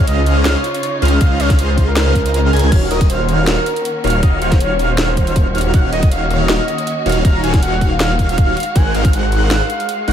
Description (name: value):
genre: future bass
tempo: 159 BPM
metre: 4/4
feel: swing 54% on 16ths, half-time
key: Eb dorian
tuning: A4 = 442 Hz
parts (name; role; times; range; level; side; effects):
- warm velvety synth lead; melody; 0.0-10.1 s; Bb4 to Bb5; -22 LUFS; right 1 dB; chorus, vintage 12-bit sampler grit, sidechain pumping, ping-pong delay
- rich studio string section; sustained chords; 0.0-10.1 s; Db3 to Gb4; -26 LUFS; left 1 dB; sidechain pumping
- airy dreamy lead; arpeggios; 0.0-10.1 s; Eb6 to Ab6; -24 LUFS; equal; chorus, sidechain pumping
- supersaw chords; riff; 0.0-10.1 s; Eb3 to Ab5; -21 LUFS; right 1 dB; phaser, cassette tape, sidechain pumping, ping-pong delay
- wide detuned saw bass; bass; 0.0-10.1 s; Eb1 to Db2; -17 LUFS; equal; chorus, sidechain pumping
- trap drum kit; drums; 0.1-10.1 s; crash cymbal, hi-hat, snare drum; -23 LUFS; equal; none
- electronic kick drum; drums; 1.2-9.1 s; none; -13 LUFS; equal; none
room: light reverb, digital ambience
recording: none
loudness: -12 LUFS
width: side -9 dB against mid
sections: 0.0-10.1 A section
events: kick drops out 2.3-2.7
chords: 0.0 Dbmaj9; 2.7 Ebm7; 8.6 Ab7